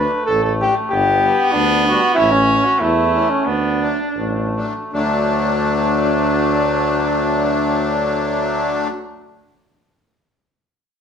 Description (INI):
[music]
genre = alpine folk, alpine dance band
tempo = 74-95 BPM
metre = 2/4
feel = swing 54% on 8ths, rubato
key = D major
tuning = A4 = 440 Hz
[part]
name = mellow flugelhorn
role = melody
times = 0.0-8.9 s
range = C#4 to B4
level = -19 LUFS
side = equal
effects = none
[part]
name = mellow trumpet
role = second line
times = 0.0-8.9 s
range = A3 to C#4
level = -21 LUFS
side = equal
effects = none
[part]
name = accordion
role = accompaniment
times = 0.0-8.9 s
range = E3 to D4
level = -20 LUFS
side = left 2 dB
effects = light tremolo tuning
[part]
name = warm tuba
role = bass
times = 0.0-8.9 s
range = G1 to E2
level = -22 LUFS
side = left 1 dB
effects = none
[sound]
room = wet large studio reverb, RT60 1.1 s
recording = band playing live in one room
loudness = -15 LUFS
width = side -7 dB against mid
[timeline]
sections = 0.0-4.9 A section; 4.9-8.1 B section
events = slowing down 2.2-4.9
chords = 0.0 D; 0.9 G; 2.2 A; 3.5 D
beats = 0.27 | 0.91 1.54 | 2.17 2.81 | 3.46 4.16 | 4.94 5.75 | 6.54 7.32